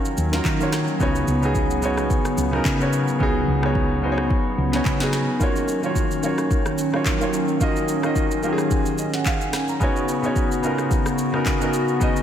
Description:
amapiano; 109 BPM; 4/4; swing 55% on 16ths; A4 = 439 Hz
clear concert grand piano; accompaniment; 0.0-12.2 s; Db3 to Cb6; -23 LUFS; equal
hollow soft pad; sustained chords; 0.0-12.2 s; Db3 to Gb4; -25 LUFS; equal; chorus, sidechain pumping
afro-pop drum kit; drums; 0.1-12.2 s; handclaps, kick drum, rim click, shaker, snare drum; -24 LUFS; equal
woody fretless electric bass; bass; 0.2-5.3 s; Db2 to Eb3; -24 LUFS; equal
moderate lush hall reverb, RT60 2.4 s; dreamy mix soaked in reverb; -19 LUFS; side -9 dB against mid
0.0-12.2 A section
hi-hats muted 3.2-5.4; grand piano fill 4.6-5.4
0.0 Ebm7; 1.0 Db7sus4; 5.4 Ebm7; 9.8 Db7sus4

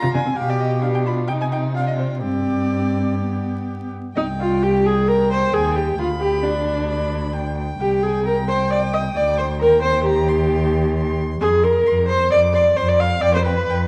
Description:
quick classical-period movement for string quartet; 132 BPM; 4/4; rubato; C minor; A4 = 445 Hz
dark violin; melody; 0.0-13.9 s; C5 to F6; -32 LUFS; equal
rich violin; second line; 0.0-13.8 s; D4 to C6; -33 LUFS; equal
rich viola; accompaniment; 0.0-13.9 s; B3 to F5; -22 LUFS; equal
rich cello; bass; 0.0-13.9 s; C2 to C3; -24 LUFS; equal
moderate recital hall reverb, RT60 1.5 s; dark, warm production, vinyl crackle; -19 LUFS; mono
0.0-4.2 A section; 4.2-13.9 B section
0.4 G7/B; 1.3 Cm; 2.2 Gsus4; 3.2 G; 4.2 Cm; 6.0 G/D; 7.8 C5; 9.6 Cm/Eb; 11.4 Fm6; 13.2 G7/F

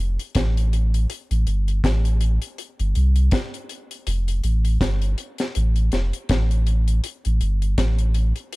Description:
roots reggae; 81 BPM; 4/4; swing 57% on 16ths; A4 = 439 Hz
warm sub bass; bass; 0.0-8.3 s; F1 to C2; -19 LUFS; equal
deep reggae drum kit; drums; 0.2-8.6 s; hi-hat, kick drum, snare drum; -25 LUFS; equal
little or no reverb; -19 LUFS; side -23 dB against mid
0.0-8.6 A section

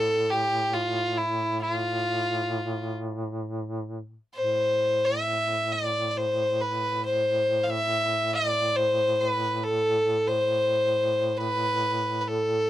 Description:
caucasian folk, Caucasian lament; 68 BPM; 3/4; uneven beats, rubato; A minor; A4 = 440 Hz
clear fiddle; melody; 0.0-12.7 s; E4 to F5; -24 LUFS; equal
warm duduk; drone; 0.0-12.7 s; A2; -32 LUFS; equal; stereo widening
little or no reverb; dry, close 1970s-style studio recording; -24 LUFS; side -13 dB against mid
0.0-12.7 A section

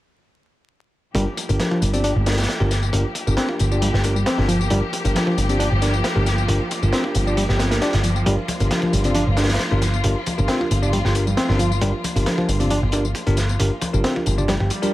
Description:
breakbeat, breaks; 135 BPM; 4/4; straight; G minor; A4 = 439 Hz
overdriven picked electric bass; bass; 1.1-14.7 s; G1; -20 LUFS; equal; low-pass filter
crunchy breakbeat drum kit; drums; 1.1-14.9 s; hi-hat, kick drum, snare drum; -27 LUFS; right 1 dB; high-pass filter on kick, high-pass filter on hats, high-pass filter on snare, high-pass filter on room
warm studio string section; sustained chords; 1.2-14.9 s; F3 to G4; -28 LUFS; left 1 dB; sidechain pumping, low-pass filter
overdriven reed electric piano; riff; 1.2-14.9 s; F3 to G4; -24 LUFS; equal; low-pass filter, tape echo
bell-like tine electric piano; stabs; 1.2-14.9 s; D4 to D5; -26 LUFS; equal; medium stereo tremolo, low-pass filter, tape echo
tambourine; drums; 1.2-14.9 s; -34 LUFS; left 10 dB
congas; percussion; 8.5-14.9 s; -31 LUFS; left 2 dB
swell; sound effects; 14.7-14.9 s; -27 LUFS; equal
light reverb; vinyl crackle; -18 LUFS; side -16 dB against mid
1.2-14.9 A section
swell 14.7
1.2 Gm7

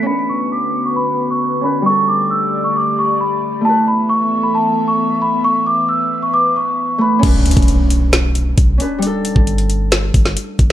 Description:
hip hop, trap; 134 BPM; 4/4; half-time; B minor; A4 = 444 Hz
large celesta; melody; 0.0-7.2 s; A5 to E6; -16 LUFS; equal; low-pass filter, tape echo
Celtic harp; accompaniment; 0.0-10.7 s; G3 to B4; -20 LUFS; right 1 dB; low-pass filter
airy breathy pad; sustained chords; 0.0-7.2 s; D3 to E5; -22 LUFS; left 2 dB; chorus, low-pass filter
warm 808-style bass; bass; 7.2-10.7 s; G1 to C#2; -15 LUFS; equal
trap drum kit; drums; 7.2-10.7 s; crash cymbal, finger snaps, hi-hat, kick drum, snare drum; -14 LUFS; equal
impact; sound effects; 7.2-9.0 s; -23 LUFS; equal
light reverb, digital ambience; -13 LUFS; side -12 dB against mid
0.1-7.2 A section; 7.2-10.7 B section
filter sweep 0.1-7.2; impact 7.2-9.0
0.1 Bmadd9; 1.9 Gsus2; 3.6 Asus2; 7.2 Bmadd9; 9.0 Gsus2

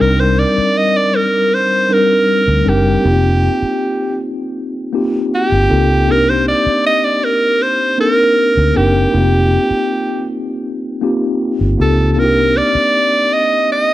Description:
lush 1970s-style soul; 79 BPM; 4/4; straight; C minor; A4 = 440 Hz
edgy alto saxophone; melody; 0.0-13.9 s; G4 to Eb5; -14 LUFS; right 1 dB
mellow tine electric piano; accompaniment; 0.0-13.9 s; G3 to Bb4; -16 LUFS; left 1 dB; medium stereo tremolo
vintage muted fingered electric bass; bass; 0.0-12.8 s; F1 to D2; -15 LUFS; equal
light reverb, small room reverb; -12 LUFS; side -15 dB against mid
0.0-13.9 A section
0.0 Cm9; 3.0 F9sus4; 6.1 Cm9; 9.1 F9sus4; 12.2 Cm9

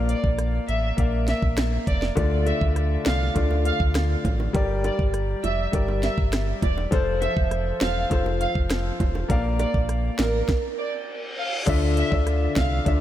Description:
dancehall; 101 BPM; 4/4; straight; D minor; A4 = 439 Hz
clear grand piano; accompaniment; 0.0-13.0 s; D3 to F5; -27 LUFS; left 4 dB
sub bass with octave; bass; 0.0-13.0 s; E1 to D2; -25 LUFS; equal
dark studio violin section; melody; 0.1-12.8 s; Bb4 to F5; -30 LUFS; right 2 dB; tape echo
island pop drum kit; drums; 0.1-13.0 s; crash cymbal, hi-hat, kick drum, rim click, snare drum; -25 LUFS; equal
bongos; percussion; 2.2-10.3 s; -35 LUFS; right 3 dB
reverse cymbal; sound effects; 10.9-11.7 s; -33 LUFS; left 1 dB
light reverb; -21 LUFS; side -12 dB against mid
0.0-11.7 A section; 11.7-13.0 B section
stop 10.5-11.7; reverse cymbal 10.9-11.7
0.0 Bb; 2.2 Dm; 4.5 Gm; 6.9 F; 9.3 Bb; 11.7 Dmadd9

